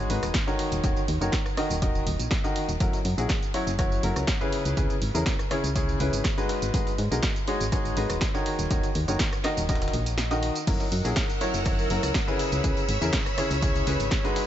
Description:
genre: piano house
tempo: 122 BPM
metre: 4/4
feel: straight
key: unclear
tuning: A4 = 436 Hz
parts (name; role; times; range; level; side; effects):
- clear grand piano; riff; 0.0-14.5 s; C#3 to D#5; -28 LUFS; left 1 dB; sidechain pumping, tape echo
- solid FM bass; bass; 0.0-14.1 s; D#1 to G#2; -28 LUFS; equal; sidechain pumping
- breakbeat sampler-style drum kit; drums; 0.1-14.5 s; hi-hat, snare drum; -43 LUFS; right 1 dB; none
- punchy analog drum machine; drums; 0.1-14.5 s; crash cymbal, hi-hat, rim click, snare drum, tambourine; -32 LUFS; right 1 dB; none
- electronic kick drum; drums; 0.3-14.2 s; none; -28 LUFS; equal; none
- string machine, violins; sustained chords; 10.7-14.5 s; A#4 to F#6; -32 LUFS; equal; ensemble chorus, sidechain pumping
- tambourine; percussion; 10.7-14.5 s; none; -42 LUFS; left 5 dB; none
room: light reverb, digital ambience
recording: nothing above 7.9 kHz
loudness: -23 LUFS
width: side -11 dB against mid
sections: 0.0-14.5 A section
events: kick drops out 10.2-10.7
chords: 0.0 G#m7; 0.6 D#m7; 2.8 F#7; 4.5 C#m7; 6.5 G#m7; 8.5 D#m7; 10.7 F#7; 12.4 C#m7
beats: 0.35 | 0.84 1.33 1.82 2.31 | 2.81 3.30 3.79 4.28 | 4.77 5.26 5.75 6.25 | 6.74 7.23 7.72 8.21 | 8.71 9.20 9.69 10.18 | 10.67 11.16 11.66 12.15 | 12.64 13.13 13.62 14.12

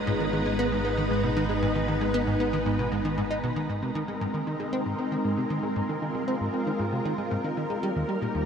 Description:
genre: ambient, sequencer-driven space music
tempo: 116 BPM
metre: 4/4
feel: straight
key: Ab major from 3.7 s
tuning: A4 = 438 Hz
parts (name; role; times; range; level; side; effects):
- string machine, full ensemble; sustained chords; 0.0-8.5 s; G3 to B4; -28 LUFS; equal; ensemble chorus
- analog drone; bass; 0.1-3.7 s; G#1; -33 LUFS; equal; chorus
- wind-like tuned noise texture; texture; 0.0-3.7 s; A#5; -44 LUFS; right 3 dB; built-in reverb
- plucky analog bass; riff; 0.1-8.5 s; Eb2 to D#4; -29 LUFS; equal; wide subtle chorus, ping-pong delay
room: wet huge ambient reverb, RT60 7.8 s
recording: none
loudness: -25 LUFS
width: side -7 dB against mid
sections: 0.0-3.7 A section; 3.7-8.5 B section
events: none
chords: 0.0 G#m; 3.7 Abadd9; 7.8 Eb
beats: 0.07 0.59 1.11 | 1.62 2.14 2.66 3.18 | 3.69 4.21 4.73 5.25 | 5.76 6.28 6.80 7.31 | 7.83 8.35

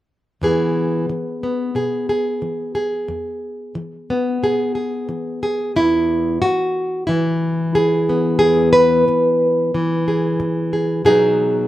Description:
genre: folk, solo fingerstyle acoustic guitar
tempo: 90 BPM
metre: 4/4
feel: straight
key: E major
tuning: A4 = 441 Hz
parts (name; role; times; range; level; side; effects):
- nylon-string guitar; solo; 0.4-11.7 s; E2 to B4; -16 LUFS; equal; none
room: little or no reverb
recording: recorded outdoors, with no room sound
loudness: -16 LUFS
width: side -14 dB against mid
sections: 0.4-5.7 A section; 5.7-11.7 B section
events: none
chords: 0.4 E; 11.0 B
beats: | 0.42 1.09 1.76 2.42 | 3.08 3.75 4.41 5.08 | 5.75 6.41 7.08 7.74 | 8.40 9.06 9.72 10.39 | 11.05

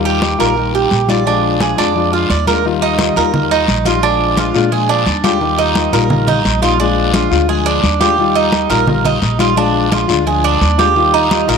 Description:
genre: latin, Cuban son and guajira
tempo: 173 BPM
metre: 4/4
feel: straight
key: Eb major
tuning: A4 = 441 Hz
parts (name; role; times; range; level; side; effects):
- fingerpicked plugged-in steel-string acoustic guitar; accompaniment; 0.0-11.6 s; Eb3 to F4; -17 LUFS; left 11 dB; none
- Cuban tres; arpeggios; 0.0-11.6 s; D4 to D5; -15 LUFS; right 9 dB; none
- upright bass; bass; 0.0-11.6 s; Bb1 to Bb2; -19 LUFS; equal; none
- congas; percussion; 0.1-11.6 s; none; -20 LUFS; left 1 dB; none
- guiro; percussion; 0.2-11.6 s; none; -23 LUFS; left 10 dB; none
room: moderate echo chamber reverb, RT60 1.9 s, small room ambience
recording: 1960s-style stereo with parts hard left and right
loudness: -11 LUFS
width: side -6 dB against mid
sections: 0.0-2.6 A section; 2.6-11.6 B section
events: none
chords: 0.0 Ebadd9; 1.3 Bb7; 2.6 Ebadd9; 4.0 Bb7; 5.4 Ebadd9; 6.8 Bb7; 8.2 Ebadd9; 9.6 Bb7; 11.0 Ebadd9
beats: 0.22 0.57 0.92 | 1.26 1.61 1.96 2.30 | 2.65 2.99 3.34 3.68 | 4.03 4.37 4.72 5.07 | 5.41 5.76 6.10 6.45 | 6.79 7.14 7.49 7.83 | 8.18 8.53 8.88 9.22 | 9.57 9.92 10.27 10.62 | 10.96 11.31

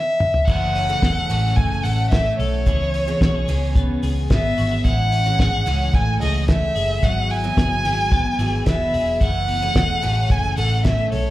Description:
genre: jangly indie pop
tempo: 110 BPM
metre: 4/4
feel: straight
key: unclear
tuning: A4 = 440 Hz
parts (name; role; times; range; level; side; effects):
- warm violin; melody; 0.0-11.3 s; C#5 to G#5; -22 LUFS; equal; slapback echo, tape echo
- cloth-damped thuddy drum kit; drums; 0.2-11.2 s; crash cymbal, hi-hat, kick drum, snare drum, toms; -20 LUFS; equal; none
- picked steel-string acoustic guitar; accompaniment; 0.5-11.3 s; F#2 to A4; -30 LUFS; right 4 dB; slapback echo
- twelve-string electric guitar; arpeggios; 0.5-11.3 s; E3 to A4; -27 LUFS; left 2 dB; analog chorus, slapback echo
- vintage muted fingered electric bass; bass; 0.5-11.3 s; E1 to C#2; -22 LUFS; equal; none
room: small room ambience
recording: live gig heard through the venue's PA, club ambience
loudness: -17 LUFS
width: side -15 dB against mid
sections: 0.5-11.3 A section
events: drum fill 0.0-0.5; stop 0.0-0.5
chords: 0.5 F#m7; 2.7 C#m7; 4.8 Amaj7; 7.0 Eadd9; 9.2 F#m7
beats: | 0.48 1.02 1.57 2.12 | 2.67 3.21 3.76 4.30 | 4.85 5.39 5.94 6.48 | 7.03 7.58 8.12 8.66 | 9.21 9.76 10.30 10.85

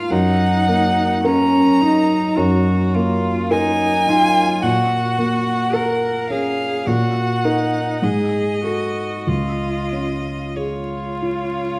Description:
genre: classical, slow romantic movement for piano trio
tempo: 46-54 BPM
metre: 4/4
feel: rubato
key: Db major from 4.6 s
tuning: A4 = 440 Hz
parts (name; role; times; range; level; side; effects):
- clear violin; melody; 0.0-11.8 s; Db5 to Bb5; -24 LUFS; equal; none
- clear cello; second line; 0.0-11.8 s; Db4 to Bb4; -24 LUFS; equal; none
- dark concert grand piano; accompaniment; 0.0-11.8 s; Db2 to Bb4; -22 LUFS; equal; none
room: wet recital hall reverb, RT60 1.3 s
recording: vinyl crackle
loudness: -19 LUFS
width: mono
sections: 0.0-11.8 A section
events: none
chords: 0.1 Ebm/Gb; 4.6 Gb/Bb; 6.9 Ebm/Bb; 8.0 Ab5; 9.3 Db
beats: | 0.11 1.25 2.37 3.51 | 4.62 5.74 6.86 8.02 | 9.27 10.56

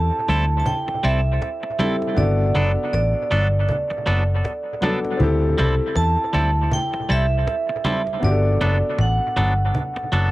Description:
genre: lovers rock reggae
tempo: 79 BPM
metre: 4/4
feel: swing 58% on 16ths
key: G major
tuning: A4 = 440 Hz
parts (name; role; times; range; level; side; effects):
- vibraphone with hard mallets; melody; 0.0-10.3 s; D5 to A5; -24 LUFS; right 3 dB; cassette tape, analog delay
- clear baby grand piano; accompaniment; 0.0-10.3 s; B3 to A4; -27 LUFS; left 3 dB; cassette tape, analog delay
- vintage muted fingered electric bass; bass; 0.0-10.3 s; F#1 to E2; -19 LUFS; equal; none
- twangy electric guitar; stabs; 0.3-10.3 s; F#3 to A4; -26 LUFS; equal; cassette tape, analog delay
- cajon; drums; 0.3-10.2 s; none; -31 LUFS; equal; cassette tape, analog delay
- congas; percussion; 0.3-9.9 s; none; -28 LUFS; right 1 dB; analog delay
room: light reverb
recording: home recording on cassette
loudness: -18 LUFS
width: side -17 dB against mid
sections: 0.0-10.3 A section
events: none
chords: 0.0 D9sus4; 2.2 Gmaj9; 5.2 D9sus4; 8.2 Gmaj9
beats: 0.66 1.42 | 2.17 2.93 3.69 4.45 | 5.20 5.96 6.72 7.47 | 8.23 8.99 9.75

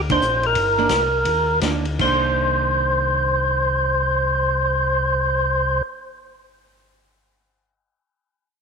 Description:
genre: soul jazz organ trio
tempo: 157-181 BPM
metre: 4/4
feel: swing 64% on 8ths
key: C minor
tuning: A4 = 440 Hz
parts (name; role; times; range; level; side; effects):
- mellow tonewheel organ; bass; 0.0-5.8 s; G1 to Eb2; -24 LUFS; left 1 dB; slow rotary speaker
- percussive tonewheel organ; melody; 0.1-5.8 s; Bb4 to C5; -19 LUFS; equal; slow rotary speaker, overdrive
- archtop guitar, miked and amplified; accompaniment; 0.1-6.4 s; Eb3 to D4; -28 LUFS; right 10 dB; none
- vintage drum kit; drums; 0.1-2.1 s; crash cymbal, hi-hat, kick drum, ride cymbal, snare drum; -27 LUFS; left 5 dB; none
room: light reverb, studio reverb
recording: 1960s-style stereo, faint mains hum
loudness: -17 LUFS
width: side -5 dB against mid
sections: 0.0-2.0 A section; 2.0-5.1 B section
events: slowing down 0.0-2.0; band accent 0.1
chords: 0.0 Cm9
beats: 0.23 | 0.57 0.91 1.27 1.63 | 2.01 2.39 2.77 3.15 | 3.53 3.92 4.30 4.68

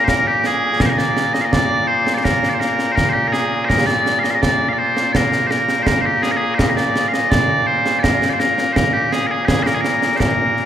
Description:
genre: scottish traditional, Scottish pipe music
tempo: 83 BPM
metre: 2/4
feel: straight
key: Bb mixolydian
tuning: A4 = 440 Hz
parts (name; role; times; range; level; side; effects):
- loud bright bagpipes; melody; 0.0-10.7 s; Bb2 to F5; -16 LUFS; equal; none
- concert snare drum and concert bass drum; drums; 0.1-10.7 s; none; -19 LUFS; right 1 dB; none
room: wet cathedral reverb, RT60 6.6 s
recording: in a vast, echoing space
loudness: -14 LUFS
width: side -10 dB against mid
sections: 0.1-10.7 A section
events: none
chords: none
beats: | 0.09 0.81 | 1.53 2.26 | 2.98 3.70 | 4.42 5.15 | 5.87 6.59 | 7.32 8.04 | 8.76 9.49 | 10.21

